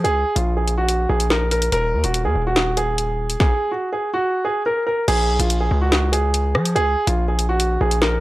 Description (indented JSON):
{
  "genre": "hip hop, drill",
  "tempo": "143 BPM",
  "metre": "4/4",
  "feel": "half-time",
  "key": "Bb minor",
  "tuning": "A4 = 440 Hz",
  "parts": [
    { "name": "warm concert grand piano", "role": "melody", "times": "0.0-8.2 s", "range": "F4 to Bb4", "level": "-20 LUFS", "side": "right 1 dB", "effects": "none" },
    { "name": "distorted 808-style bass", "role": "bass", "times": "0.0-8.2 s", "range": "Eb1 to F3", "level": "-20 LUFS", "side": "equal", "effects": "distortion" },
    { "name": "drill drum kit", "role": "drums", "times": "0.0-8.1 s", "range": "crash cymbal, hi-hat, kick drum, rim click, snare drum", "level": "-21 LUFS", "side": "left 1 dB", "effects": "none" }
  ],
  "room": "digital ambience",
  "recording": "dry, gritty hardware recording, transformer saturation",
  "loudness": "-17 LUFS",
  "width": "side -17 dB against mid",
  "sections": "0.0-5.1 A section; 5.1-8.2 B section",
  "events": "none",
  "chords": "0.0 Bb7(no3); 1.7 Ebmadd11; 5.1 Bbm7"
}